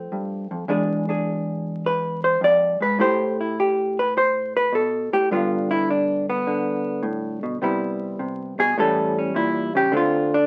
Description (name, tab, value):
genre	solo jazz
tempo	104 BPM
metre	4/4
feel	swing 69% on 8ths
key	unclear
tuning	A4 = 438 Hz
part	hollow-body jazz guitar	solo	0.0-10.5 s	E2 to D5	-22 LUFS	equal	none
room	moderate studio reverb, RT60 0.6 s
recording	very old 78 rpm record, vinyl crackle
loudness	-22 LUFS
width	mono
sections	0.0-10.5 A section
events	hollow-body jazz guitar solo 0.0-10.5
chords	0.0 F; 0.7 E7; 3.0 A5; 5.3 Gadd9; 7.6 Cmaj7; 8.8 A7b9; 9.9 Dm7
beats	0.11 | 0.69 1.26 1.84 2.42 | 2.99 3.57 4.15 4.72 | 5.30 5.88 6.46 7.03 | 7.61 8.19 8.77 9.35 | 9.93